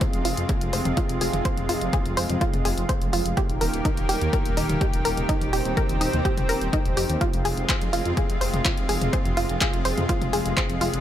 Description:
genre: melodic techno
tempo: 125 BPM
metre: 4/4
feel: straight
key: F minor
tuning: A4 = 440 Hz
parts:
  - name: lush unison pad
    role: sustained chords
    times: 0.0-11.0 s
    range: C3 to G4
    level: -28 LUFS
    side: equal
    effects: chorus, sidechain pumping
  - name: analog pluck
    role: arpeggios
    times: 0.0-10.9 s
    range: Eb4 to C5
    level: -28 LUFS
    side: equal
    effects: chorus, sidechain pumping, ping-pong delay
  - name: electronic kick drum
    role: drums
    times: 0.0-10.7 s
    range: none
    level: -26 LUFS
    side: equal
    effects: none
  - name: punchy analog drum machine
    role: drums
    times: 0.0-11.0 s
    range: handclaps, hi-hat, toms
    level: -29 LUFS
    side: left 1 dB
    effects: overdrive, sidechain pumping on hats, sidechain pumping on toms
  - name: dark detuned saw bass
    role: bass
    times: 0.1-11.0 s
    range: Eb1 to F2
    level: -28 LUFS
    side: equal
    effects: sidechain pumping
room: digital ambience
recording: none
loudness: -21 LUFS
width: side -11 dB against mid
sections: 0.0-11.0 A section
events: none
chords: 0.0 Fm; 3.4 Eb; 7.2 Fm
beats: 0.01 0.49 0.97 | 1.45 1.93 2.41 2.89 | 3.37 3.85 4.33 4.81 | 5.29 5.77 6.25 6.73 | 7.21 7.69 8.17 8.65 | 9.13 9.61 10.09 10.57

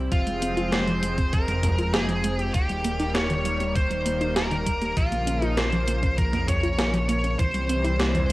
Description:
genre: synthwave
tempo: 99 BPM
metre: 4/4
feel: straight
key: F minor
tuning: A4 = 440 Hz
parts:
  - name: lush unison pad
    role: sustained chords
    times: 0.0-8.3 s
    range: Db3 to C4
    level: -30 LUFS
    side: equal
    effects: chorus, sidechain pumping, cassette tape
  - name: warbly dusty pluck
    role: arpeggios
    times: 0.0-8.3 s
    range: Eb3 to Bb4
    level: -30 LUFS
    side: right 1 dB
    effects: chorus, cassette tape, tape echo
  - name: round analog bass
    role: bass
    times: 0.0-8.3 s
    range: Eb1 to C2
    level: -29 LUFS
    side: equal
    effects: sidechain pumping
  - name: high-gain lead guitar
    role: melody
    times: 0.1-8.3 s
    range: F4 to Db5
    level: -28 LUFS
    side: equal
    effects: distortion, tape echo
  - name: electronic kick drum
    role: drums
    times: 0.1-7.5 s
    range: none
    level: -25 LUFS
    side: equal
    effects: cassette tape
  - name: gated 80s digital drum machine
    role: drums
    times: 0.1-8.3 s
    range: hi-hat, snare drum, toms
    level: -28 LUFS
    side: equal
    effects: gated reverb, gated reverb snare, cassette tape
room: light reverb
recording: home recording on cassette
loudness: -22 LUFS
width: side -18 dB against mid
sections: 0.0-8.3 A section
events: none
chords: 0.1 Fm; 2.5 Eb; 5.0 Bbm; 7.4 C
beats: | 0.12 0.72 1.33 1.94 | 2.54 3.15 3.75 4.36 | 4.97 5.57 6.18 6.79 | 7.39 8.00

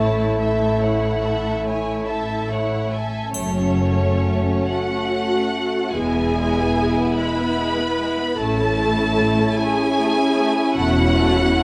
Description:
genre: classical, slow romantic movement for symphony orchestra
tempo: 44-51 BPM (dotted quarters)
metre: 12/8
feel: rubato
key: A major, F# minor from 3.3 s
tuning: A4 = 437 Hz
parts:
  - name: rich symphonic violin section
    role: melody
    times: 0.0-11.6 s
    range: C#5 to B5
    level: -28 LUFS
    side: equal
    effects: none
  - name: warm symphonic violin section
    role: second line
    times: 0.0-11.6 s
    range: G#3 to E5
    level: -28 LUFS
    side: equal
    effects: none
  - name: warm bassoon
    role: accompaniment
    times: 0.0-2.9 s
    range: A3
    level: -25 LUFS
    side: equal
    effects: none
  - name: warm symphonic viola section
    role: accompaniment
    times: 0.0-11.6 s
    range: C#4 to B4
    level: -29 LUFS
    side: equal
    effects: none
  - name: rich studio double bass section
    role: bass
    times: 0.0-11.6 s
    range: E1 to A1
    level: -29 LUFS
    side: equal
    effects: none
  - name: rich symphonic cello section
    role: bass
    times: 0.0-11.6 s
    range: E2 to A2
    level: -27 LUFS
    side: equal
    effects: none
  - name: triangle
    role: percussion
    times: 3.3-5.1 s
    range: none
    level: -37 LUFS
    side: equal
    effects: none
  - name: mellow French horn section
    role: sustained chords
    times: 3.4-11.6 s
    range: A3 to F#4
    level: -26 LUFS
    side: equal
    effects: none
room: light reverb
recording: close, detailed microphones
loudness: -20 LUFS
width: mono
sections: 0.0-3.3 A section; 3.3-11.6 B section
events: none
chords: 0.0 A; 3.3 F#m; 5.9 E; 8.4 A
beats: 0.81 2.07 | 3.34 4.68 5.94 7.16 | 8.38 9.57 10.77

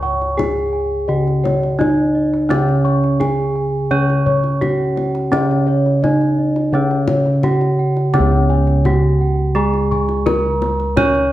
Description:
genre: Javanese gamelan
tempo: 85 BPM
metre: 4/4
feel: straight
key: C# pelog barang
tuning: A4 = 442 Hz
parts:
  - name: gamelan-type bronze metallophone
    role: melody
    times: 0.0-11.3 s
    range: C#4 to C#5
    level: -20 LUFS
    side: equal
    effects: none
  - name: gamelan-type bossed gongs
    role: arpeggios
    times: 0.0-11.3 s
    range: C#5 to C#6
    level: -25 LUFS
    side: left 2 dB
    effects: none
  - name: gamelan-type bronze metallophone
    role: arpeggios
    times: 0.0-11.3 s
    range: C#5 to C#6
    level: -26 LUFS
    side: right 5 dB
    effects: none
  - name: gamelan-type bossed gongs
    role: bass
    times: 0.0-11.3 s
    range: C#2 to C#5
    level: -20 LUFS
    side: left 1 dB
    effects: none
  - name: kendang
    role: percussion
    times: 0.2-11.2 s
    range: none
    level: -24 LUFS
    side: left 3 dB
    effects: none
  - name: gamelan-type bronze metallophone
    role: accompaniment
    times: 2.5-11.3 s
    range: C#3 to C#4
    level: -19 LUFS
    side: right 2 dB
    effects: none
room: moderate recital hall reverb, RT60 1.3 s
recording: dark, warm production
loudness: -14 LUFS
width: side -14 dB against mid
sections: 0.0-8.1 A section; 8.1-11.3 A section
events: none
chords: none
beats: 0.38 1.08 1.79 | 2.50 3.20 3.91 4.61 | 5.32 6.03 6.73 7.44 | 8.14 8.85 9.55 10.26 | 10.97

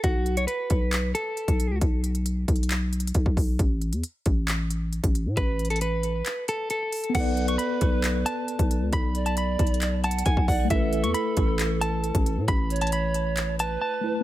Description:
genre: hip hop, trap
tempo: 135 BPM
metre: 4/4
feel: half-time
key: A major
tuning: A4 = 441 Hz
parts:
  - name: clean electric guitar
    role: melody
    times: 0.0-1.8, 5.4-14.2 s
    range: F#4 to C#6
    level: -29 LUFS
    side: equal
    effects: ping-pong delay
  - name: growling 808-style bass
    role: bass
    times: 0.0-13.8 s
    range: A1 to A2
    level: -26 LUFS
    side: equal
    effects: none
  - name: trap drum kit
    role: drums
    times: 0.0-13.7 s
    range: crash cymbal, handclaps, hi-hat, kick drum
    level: -26 LUFS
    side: equal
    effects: none
  - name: breathy polished pan flute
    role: second line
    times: 7.1-14.2 s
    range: A4 to F#5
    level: -31 LUFS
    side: right 4 dB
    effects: ping-pong delay
  - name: mellow tine electric piano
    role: accompaniment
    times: 7.1-14.2 s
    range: A3 to D5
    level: -31 LUFS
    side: left 1 dB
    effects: medium stereo tremolo
room: little or no reverb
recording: none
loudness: -23 LUFS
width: side -14 dB against mid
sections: 0.0-7.1 A section; 7.1-14.2 B section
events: break 6.3-7.1; drums muted 13.8-14.2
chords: 0.0 N.C.; 3.6 Asus2; 7.1 Bm7; 10.7 Asus2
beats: | 0.04 0.48 0.93 1.37 | 1.81 2.26 2.70 3.15 | 3.59 4.04 4.48 4.93 | 5.37 5.82 6.26 6.70 | 7.15 7.59 8.04 8.48 | 8.93 9.37 9.81 10.26 | 10.70 11.15 11.59 12.04 | 12.48 12.93 13.37 13.81

